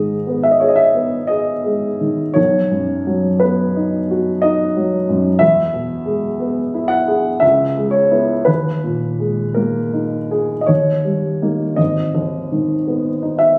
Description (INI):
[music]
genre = classical, romantic nocturne for solo piano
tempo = 54-62 BPM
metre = 3/4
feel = rubato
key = G# minor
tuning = A4 = 439 Hz
[part]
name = warm grand piano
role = solo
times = 0.0-13.6 s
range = G#1 to F#5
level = -17 LUFS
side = equal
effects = none
[sound]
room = wet recital hall reverb, RT60 1.3 s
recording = recorded on a phone in the room, studio ambience, compression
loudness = -17 LUFS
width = mono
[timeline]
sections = 0.0-13.6 A section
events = none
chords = 0.0 G#m; 2.4 B; 5.4 E; 7.4 C#m7; 8.5 D#sus4; 10.7 D#; 11.8 G#m